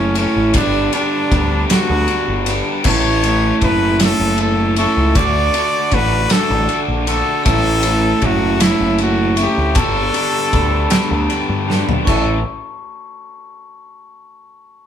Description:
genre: indie rock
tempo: 52 BPM (dotted quarters)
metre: 6/8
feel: straight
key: A mixolydian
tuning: A4 = 440 Hz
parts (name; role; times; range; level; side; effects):
- clear trumpet; melody; 0.0-12.4 s; C#4 to D5; -20 LUFS; left 1 dB; none
- pedal harmonium; sustained chords; 0.0-12.4 s; G3 to A5; -29 LUFS; equal; none
- biting overdriven guitar; riff; 0.0-12.4 s; G2 to A4; -23 LUFS; left 5 dB; none
- electric guitar through a small old amp; riff; 0.0-12.4 s; A2 to A4; -20 LUFS; right 4 dB; none
- growling picked electric bass; bass; 0.0-12.4 s; F#1 to G2; -20 LUFS; equal; overdrive
- loose indie drum kit; drums; 0.2-12.3 s; crash cymbal, kick drum, ride cymbal, snare drum, toms; -20 LUFS; equal; none
- group handclap; percussion; 0.6-12.4 s; none; -32 LUFS; right 3 dB; none
- glockenspiel with hard plastic mallets; second line; 2.9-12.4 s; A5 to E6; -29 LUFS; left 4 dB; none
room: moderate large studio reverb, RT60 0.9 s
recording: band playing live in one room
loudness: -13 LUFS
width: side -9 dB against mid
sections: 0.0-12.1 A section; 12.1-14.4 B section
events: drum fill 11.7-12.1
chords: 0.0 A; 0.5 Gadd9; 2.9 A; 5.2 D; 7.5 A; 9.8 Gadd9; 12.1 A

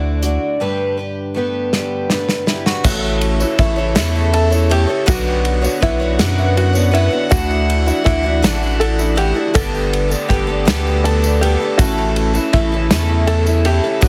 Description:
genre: indie folk with a building arrangement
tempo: 54 BPM (dotted quarters)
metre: 6/8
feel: straight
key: unclear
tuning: A4 = 440 Hz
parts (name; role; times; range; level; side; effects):
- fingerpicked steel-string acoustic guitar; accompaniment; 0.0-2.8 s; D2 to F#4; -26 LUFS; equal; none
- picked twelve-string acoustic guitar; accompaniment; 0.0-14.1 s; A2 to D5; -23 LUFS; equal; none
- saturated sub bass; bass; 0.0-14.1 s; G1 to F#2; -20 LUFS; equal; none
- natural country drum kit; drums; 0.2-14.1 s; crash cymbal, hi-hat, kick drum, ride cymbal, snare drum; -22 LUFS; equal; none
- warm chamber string section; sustained chords; 2.8-14.1 s; C#3 to F#5; -28 LUFS; equal; none
- open-back banjo; arpeggios; 2.8-14.1 s; E4 to A4; -24 LUFS; equal; digital delay
- tambourine; percussion; 2.8-14.1 s; none; -34 LUFS; equal; none
room: light reverb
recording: heavily compressed radio sound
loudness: -16 LUFS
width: mono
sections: 0.0-2.8 A section; 2.8-14.1 B section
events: drum fill 1.7-2.8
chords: 0.0 Dadd9; 0.6 Gadd9; 2.8 A; 5.1 Bmadd9; 7.3 Dadd9; 9.6 Gadd9; 11.8 A

